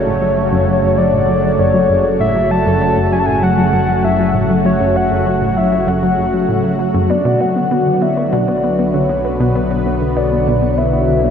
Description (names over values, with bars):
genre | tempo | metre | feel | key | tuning
ambient, sequencer-driven space music | 98 BPM | 4/4 | straight | F# minor | A4 = 440 Hz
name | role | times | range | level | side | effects
soft octave-layered synth lead | melody | 0.0-11.3 s | C#5 to A5 | -17 LUFS | left 1 dB | chorus, shimmer reverb, ping-pong delay
sweeping resonant pad | sustained chords | 0.0-11.3 s | C#3 to B4 | -17 LUFS | equal | chorus, shimmer reverb
analog drone | bass | 0.0-11.3 s | F#1 to B1 | -23 LUFS | equal | chorus
analog pluck | riff | 0.1-11.3 s | F#2 to B3 | -18 LUFS | equal | chorus, ping-pong delay
room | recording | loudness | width
wet huge ambient reverb, RT60 7.8 s | dreamy mix soaked in reverb | -12 LUFS | side -8 dB against mid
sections
0.0-11.3 A section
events
filter sweep on synth arpeggio sound 0.0-11.3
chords
0.0 F#m; 7.1 Bm